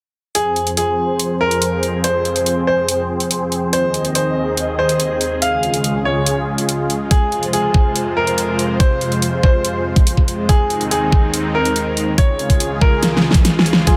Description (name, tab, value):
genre	heavy wobble dubstep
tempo	142 BPM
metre	4/4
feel	half-time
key	F minor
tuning	A4 = 441 Hz
part	bright baby grand piano	melody	0.3-14.0 s	Ab4 to F5	-22 LUFS	equal	low-pass filter, dub echo
part	supersaw pad	sustained chords	0.3-14.0 s	Db2 to Eb5	-22 LUFS	equal	sidechain pumping, low-pass filter
part	dubstep drum kit	drums	0.3-14.0 s	hi-hat, snare drum	-21 LUFS	equal	overdrive
part	electronic kick drum	drums	7.1-14.0 s	none	-15 LUFS	equal	overdrive
part	riser	sound effects	13.9-14.0 s	none	barely audible	none	none
part	muted studio string section	texture	13.9-14.0 s	F4	-26 LUFS	equal	sidechain pumping
room	light reverb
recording	none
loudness	-17 LUFS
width	mono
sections	0.3-13.9 A section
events	filter sweep on supersaw synth 0.3-13.9; drum fill 13.0-13.9; kick drops out 13.4-13.9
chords	0.3 Fm; 3.7 Ab/Eb; 5.4 Db; 7.1 Fm; 10.5 Ab/Eb; 12.2 Db